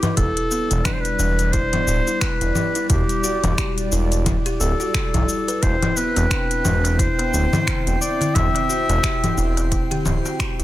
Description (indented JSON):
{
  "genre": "organic downtempo",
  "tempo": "88 BPM",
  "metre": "4/4",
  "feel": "swing 58% on 16ths",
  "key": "unclear",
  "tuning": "A4 = 438 Hz",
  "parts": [
    { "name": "warm clarinet", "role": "melody", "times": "0.0-9.7 s", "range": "G4 to E5", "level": "-24 LUFS", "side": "left 1 dB", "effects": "tape echo" },
    { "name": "warm analog pad", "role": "sustained chords", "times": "0.0-10.6 s", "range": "G3 to G5", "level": "-30 LUFS", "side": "right 1 dB", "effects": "chorus, sidechain pumping" },
    { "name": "buzzing kalimba", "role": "arpeggios", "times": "0.0-10.6 s", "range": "B3 to B4", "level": "-27 LUFS", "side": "equal", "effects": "tape echo" },
    { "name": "organic electronic drum kit", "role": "drums", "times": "0.0-10.6 s", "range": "congas, finger snaps, hi-hat, shaker", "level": "-24 LUFS", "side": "left 2 dB", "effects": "soft clipping on snare" },
    { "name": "smooth synth bass", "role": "bass", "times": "0.2-10.6 s", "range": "D1 to B1", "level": "-21 LUFS", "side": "equal", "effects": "sidechain pumping" },
    { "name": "electronic kick drum", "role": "drums", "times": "0.2-10.6 s", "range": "none", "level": "-24 LUFS", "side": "equal", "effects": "overdrive" },
    { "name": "drifting glass-harmonics texture", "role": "texture", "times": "6.7-10.6 s", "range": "C4 to C7", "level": "-36 LUFS", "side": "left 2 dB", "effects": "chorus, built-in reverb" },
    { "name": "darbuka", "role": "percussion", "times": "5.8-10.4 s", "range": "none", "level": "-29 LUFS", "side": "left 2 dB", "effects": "none" }
  ],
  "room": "little or no reverb",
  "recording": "dense, heavily limited modern master",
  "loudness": "-18 LUFS",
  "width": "side -15 dB against mid",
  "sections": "0.0-10.6 A section",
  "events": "fade-out 9.3-10.6",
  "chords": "0.2 Dsus4; 5.6 Cmaj7"
}